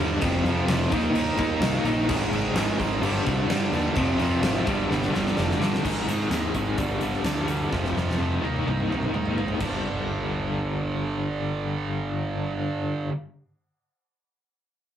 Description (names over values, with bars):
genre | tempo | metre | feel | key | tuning
hard rock | 128 BPM | 4/4 | straight | G phrygian | A4 = 441 Hz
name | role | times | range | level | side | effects
crunchy overdriven guitar | riff | 0.0-13.1 s | F2 to Eb4 | -29 LUFS | left 2 dB | tremolo
crunchy overdriven guitar | riff | 0.0-5.8 s | F2 to Eb4 | -30 LUFS | equal | none
tight distorted guitar | riff | 0.0-13.1 s | F2 to Eb4 | -29 LUFS | right 4 dB | distortion
fuzz fingered electric bass | bass | 0.0-12.6 s | F1 to Ab2 | -29 LUFS | equal | overdrive
huge arena drum kit | drums | 0.2-9.7 s | crash cymbal, hi-hat, kick drum, snare drum, toms | -28 LUFS | equal | none
room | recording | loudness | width
wet small room reverb, RT60 0.5 s | rough rehearsal-room recording | -23 LUFS | side -10 dB against mid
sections
0.0-5.8 A section; 5.8-9.6 B section; 9.6-13.4 C section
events
drum fill 4.9-5.8, 7.7-9.6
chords
0.2 F5; 0.9 Eb5; 2.1 Ab5; 3.0 G5; 4.0 Fm; 4.7 G5; 5.8 Ab5; 6.8 G5; 7.7 F5; 8.4 Eb5; 9.6 G5